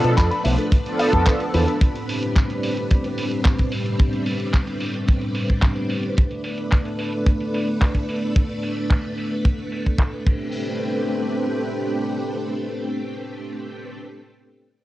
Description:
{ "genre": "nu-disco, nu disco", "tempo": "110 BPM", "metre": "4/4", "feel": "straight", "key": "A minor", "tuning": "A4 = 440 Hz", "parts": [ { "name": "warm analog pad", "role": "accompaniment", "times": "0.0-1.6 s", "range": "F3 to B4", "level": "-22 LUFS", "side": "equal", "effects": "tremolo, ensemble chorus, vintage 12-bit sampler grit, sidechain pumping, cassette tape, tape echo" }, { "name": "string machine, full ensemble", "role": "sustained chords", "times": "0.0-14.0 s", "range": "A2 to B4", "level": "-24 LUFS", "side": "equal", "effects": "ensemble chorus, sidechain pumping, cassette tape" }, { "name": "fingered electric bass with an envelope filter", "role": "bass", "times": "0.0-1.6 s", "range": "B1 to B2", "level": "-19 LUFS", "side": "equal", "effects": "none" }, { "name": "dusty soul sampler-style drum kit", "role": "drums", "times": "0.0-10.4 s", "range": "crash cymbal, handclaps, hi-hat", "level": "-31 LUFS", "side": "right 1 dB", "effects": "low-pass filter on hats, cassette tape, low-pass filter on snare, low-pass filter on cymbals" }, { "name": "direct-recorded clean electric guitar", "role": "riff", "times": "0.2-1.7 s", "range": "A4 to B5", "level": "-27 LUFS", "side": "left 1 dB", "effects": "lush chorus, cassette tape, tape echo" }, { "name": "kick drum", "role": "drums", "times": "0.2-10.4 s", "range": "none", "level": "-18 LUFS", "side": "equal", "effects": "cassette tape" } ], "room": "light reverb", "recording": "home recording on cassette", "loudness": "-19 LUFS", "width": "side -16 dB against mid", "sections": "0.0-10.5 A section; 10.5-14.8 B section", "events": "none", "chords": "0.0 Bm7b5; 1.8 Am11; 6.2 Asus24; 10.3 Am11", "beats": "0.17 0.72 1.26 | 1.81 2.35 2.90 3.44 | 3.99 4.54 5.08 5.63 | 6.17 6.72 7.26 7.81 | 8.36 8.90 9.45 9.99 | 10.54 11.08 11.63 12.17 | 12.72 13.26 13.81" }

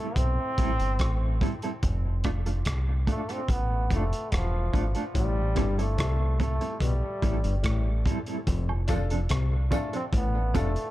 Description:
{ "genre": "dub reggae", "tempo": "72 BPM", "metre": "4/4", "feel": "straight", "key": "A minor", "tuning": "A4 = 439 Hz", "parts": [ { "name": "bright trombone", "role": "melody", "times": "0.0-10.9 s", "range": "F3 to C4", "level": "-33 LUFS", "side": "equal", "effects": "dub echo" }, { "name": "mellow electric guitar", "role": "accompaniment", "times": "0.0-10.7 s", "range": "F3 to A4", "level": "-34 LUFS", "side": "right 2 dB", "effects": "tremolo, dub echo" }, { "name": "deep dub fingered electric bass", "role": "bass", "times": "0.2-10.8 s", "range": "E1 to C2", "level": "-27 LUFS", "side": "equal", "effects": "none" }, { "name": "crunchy breakbeat drum kit", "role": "drums", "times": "0.2-10.9 s", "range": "hi-hat, kick drum, rim click", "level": "-30 LUFS", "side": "equal", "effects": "none" }, { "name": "mellow clav", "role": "riff", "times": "5.1-10.7 s", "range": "F2 to C3", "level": "-35 LUFS", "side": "left 4 dB", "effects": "dub echo" }, { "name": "woodblock and tambourine", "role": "percussion", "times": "8.7-10.7 s", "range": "none", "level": "-43 LUFS", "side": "right 6 dB", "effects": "dub echo" }, { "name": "clear baby grand piano", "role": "stabs", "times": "8.9-10.7 s", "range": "D4 to A4", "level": "-38 LUFS", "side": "left 4 dB", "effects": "dub echo" } ], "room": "light reverb", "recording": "dark, warm production", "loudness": "-24 LUFS", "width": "side -15 dB against mid", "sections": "0.0-10.9 A section", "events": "break 0.0-8.5", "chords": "0.0 Am7; 1.8 F6; 5.2 Am7; 8.5 F6", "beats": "0.16 0.99 | 1.83 2.66 3.49 4.32 | 5.15 5.98 6.81 7.64 | 8.47 9.30 10.13" }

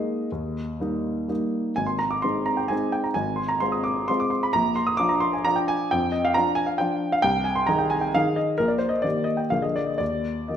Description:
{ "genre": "classical, piano waltz", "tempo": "116-140 BPM", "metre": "3/4", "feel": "rubato", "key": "unclear", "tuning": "A4 = 441 Hz", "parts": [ { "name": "warm baby grand piano", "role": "solo", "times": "0.0-10.6 s", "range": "Ab1 to Eb6", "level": "-22 LUFS", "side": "equal", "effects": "none" } ], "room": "wet recital hall reverb, RT60 1.3 s", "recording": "none", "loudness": "-22 LUFS", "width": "side -9 dB against mid", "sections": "0.0-10.6 A section", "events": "none", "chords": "0.3 Eb; 1.8 Ab; 3.2 Fm/Ab; 4.5 Bb; 7.2 Ab/C; 8.6 Eb/Bb; 9.5 Bb7; 10.0 Eb5", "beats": "| 0.34 0.81 1.30 | 1.78 2.25 2.72 | 3.18 3.63 4.09 | 4.54 4.99 5.46 | 5.91 6.34 6.80 | 7.24 7.69 8.15 | 8.60 9.05 9.53 | 10.01 10.51" }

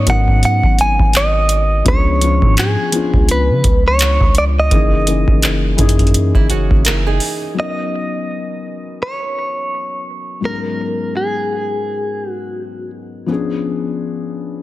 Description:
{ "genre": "contemporary R&B", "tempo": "84 BPM", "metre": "4/4", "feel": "swing 58% on 16ths", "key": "unclear", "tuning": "A4 = 438 Hz", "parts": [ { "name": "direct-recorded clean electric guitar", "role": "melody", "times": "0.0-12.9 s", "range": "G#4 to G#5", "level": "-19 LUFS", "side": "right 1 dB", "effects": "harmonic tremolo, tape echo" }, { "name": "felt-muted upright piano", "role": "accompaniment", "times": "0.0-14.6 s", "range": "G#2 to C#5", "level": "-22 LUFS", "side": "left 5 dB", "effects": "none" }, { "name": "long sustained 808-style bass", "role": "bass", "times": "0.0-7.2 s", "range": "F#1 to C#3", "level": "-16 LUFS", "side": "equal", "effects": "none" }, { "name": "booming analog drum machine", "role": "drums", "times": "0.1-7.4 s", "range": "handclaps, hi-hat, kick drum", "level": "-14 LUFS", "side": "equal", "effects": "overdrive" }, { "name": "nylon-string guitar", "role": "arpeggios", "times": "6.4-7.6 s", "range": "A#3 to A#4", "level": "-22 LUFS", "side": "right 8 dB", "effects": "tape echo" } ], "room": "digital ambience", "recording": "dense, heavily limited modern master", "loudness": "-13 LUFS", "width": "side -16 dB against mid", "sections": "0.0-7.6 A section; 7.6-14.6 B section", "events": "none", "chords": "0.0 G#m11; 1.9 C#7b9; 4.7 F#13; 7.6 Bmaj9; 10.4 G#m11; 13.3 C#7b9", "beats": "0.43 1.15 | 1.86 2.57 3.29 4.00 | 4.72 5.43 6.14 6.86 | 7.57 8.29 9.00 9.72 | 10.43 11.14 11.86 12.57 | 13.29 14.00" }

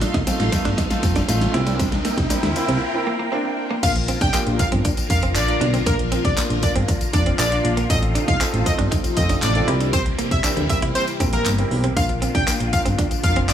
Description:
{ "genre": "dance-pop", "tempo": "118 BPM", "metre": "4/4", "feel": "straight", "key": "Bb major", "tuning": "A4 = 441 Hz", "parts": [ { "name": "warm concert grand piano", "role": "accompaniment", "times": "0.0-13.5 s", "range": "A3 to Bb4", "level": "-27 LUFS", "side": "equal", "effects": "sidechain pumping" }, { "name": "phased string machine", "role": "sustained chords", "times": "0.0-13.5 s", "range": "Bb2 to C6", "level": "-28 LUFS", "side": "equal", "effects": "ensemble chorus, phaser, sidechain pumping" }, { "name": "direct-recorded clean electric guitar", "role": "riff", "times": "0.0-13.5 s", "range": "Bb3 to E4", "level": "-28 LUFS", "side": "right 4 dB", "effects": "wide subtle chorus" }, { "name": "solid FM bass", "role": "bass", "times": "0.0-13.5 s", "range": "F1 to D2", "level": "-22 LUFS", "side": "equal", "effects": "sidechain pumping" }, { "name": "pop drum kit", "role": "drums", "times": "0.0-13.5 s", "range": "crash cymbal, handclaps, hi-hat, kick drum, snare drum", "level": "-22 LUFS", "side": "equal", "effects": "none" }, { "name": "tambourine", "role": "percussion", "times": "0.0-13.5 s", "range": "none", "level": "-33 LUFS", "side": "left 8 dB", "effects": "none" }, { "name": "riser", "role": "sound effects", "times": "0.0-2.8 s", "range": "none", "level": "-30 LUFS", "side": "equal", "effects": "none" }, { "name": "plucky unison lead", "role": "melody", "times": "3.8-13.5 s", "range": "Bb4 to G5", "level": "-24 LUFS", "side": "equal", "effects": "sidechain pumping, dub echo" } ], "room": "light reverb", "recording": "small room ambience", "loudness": "-18 LUFS", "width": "side -10 dB against mid", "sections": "0.0-3.8 A section; 3.8-13.5 B section", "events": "build-up 0.0-3.8; drum fill 0.0-2.8; riser 0.0-3.8; break 2.8-3.8; drop 3.8-13.5", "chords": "0.0 F7/A; 1.5 C7; 3.8 Bb; 7.9 F7/A; 9.7 C7; 12.0 Bb", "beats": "0.27 0.78 1.29 | 1.80 2.31 2.81 3.32 | 3.83 4.34 4.85 5.36 | 5.87 6.37 6.88 7.39 | 7.90 8.41 8.92 9.43 | 9.93 10.44 10.95 11.46 | 11.97 12.47 12.98 13.49" }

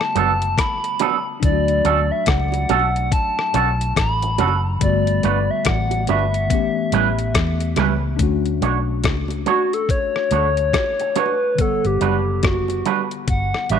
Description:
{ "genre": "lovers rock reggae", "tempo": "71 BPM", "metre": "4/4", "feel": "swing 61% on 16ths", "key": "D major", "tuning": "A4 = 439 Hz", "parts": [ { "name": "reedy FM lead", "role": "melody", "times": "0.0-13.8 s", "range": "F#4 to B5", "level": "-22 LUFS", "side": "left 1 dB", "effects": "chorus, tape echo" }, { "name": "mellow tine electric piano", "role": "accompaniment", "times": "0.0-13.8 s", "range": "D3 to F#5", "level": "-27 LUFS", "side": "left 14 dB", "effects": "medium stereo tremolo, slapback echo" }, { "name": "detuned 8-bit digital drum machine", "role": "drums", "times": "0.0-13.8 s", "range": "hi-hat, kick drum, rim click", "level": "-22 LUFS", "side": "left 2 dB", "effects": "none" }, { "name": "electric guitar with an envelope filter", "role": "stabs", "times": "0.2-13.8 s", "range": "F#3 to C#5", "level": "-22 LUFS", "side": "right 12 dB", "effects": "lush chorus" }, { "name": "vintage muted fingered electric bass", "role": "bass", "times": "0.2-13.8 s", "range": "F#1 to E2", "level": "-22 LUFS", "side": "equal", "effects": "none" }, { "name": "bongos", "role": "percussion", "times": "1.0-13.1 s", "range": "none", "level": "-30 LUFS", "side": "right 12 dB", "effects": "slapback echo" } ], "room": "light reverb", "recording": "1960s-style stereo with parts hard left and right", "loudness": "-17 LUFS", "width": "side -8 dB against mid", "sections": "0.0-8.2 A section; 8.2-13.8 B section", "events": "soft synth lead solo 8.2-13.8", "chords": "0.0 Gmaj9; 1.4 Dmaj7; 4.8 Gmaj9; 6.5 A9; 8.2 Dmaj7; 11.6 Gmaj7", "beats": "0.58 | 1.42 2.27 3.12 3.96 | 4.81 5.65 6.50 7.35 | 8.19 9.04 9.89 10.73 | 11.58 12.43 13.28" }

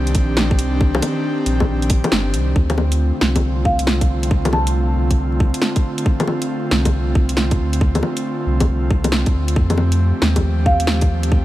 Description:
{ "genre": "future garage", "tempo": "137 BPM", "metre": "4/4", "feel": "swing 65% on 16ths", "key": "D phrygian", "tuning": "A4 = 440 Hz", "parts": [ { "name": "airy breathy pad", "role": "sustained chords", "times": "0.0-11.4 s", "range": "D3 to G4", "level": "-22 LUFS", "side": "equal", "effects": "chorus, sidechain pumping" }, { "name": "warm sub bass", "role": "bass", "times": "0.0-11.4 s", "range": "G1 to F2", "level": "-19 LUFS", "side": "equal", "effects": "sidechain pumping" }, { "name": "electronic kick drum", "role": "drums", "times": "0.1-11.4 s", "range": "none", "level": "-17 LUFS", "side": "equal", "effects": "overdrive, small room ambience" }, { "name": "garage drum kit", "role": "drums", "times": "0.1-11.3 s", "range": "bongos, hi-hat, snare drum", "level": "-22 LUFS", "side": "left 1 dB", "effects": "overdrive, small room ambience" }, { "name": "marimba with medium mallets", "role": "melody", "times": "3.7-5.2, 10.7-10.9 s", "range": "F5 to A5", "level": "-25 LUFS", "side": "right 1 dB", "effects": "vintage 12-bit sampler grit, dub echo" } ], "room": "little or no reverb", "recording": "vinyl crackle", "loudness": "-15 LUFS", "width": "side -15 dB against mid", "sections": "0.0-2.6 A section; 2.6-11.4 B section", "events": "kick drops out 2.1-2.6", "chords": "0.0 Cmadd9; 2.6 Dm7; 9.6 Fadd9", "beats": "0.36 | 0.80 1.24 1.68 2.12 | 2.56 2.99 3.43 3.87 | 4.31 4.75 5.18 5.62 | 6.06 6.50 6.93 7.37 | 7.81 8.25 8.69 9.12 | 9.56 10.00 10.44 10.88 | 11.31" }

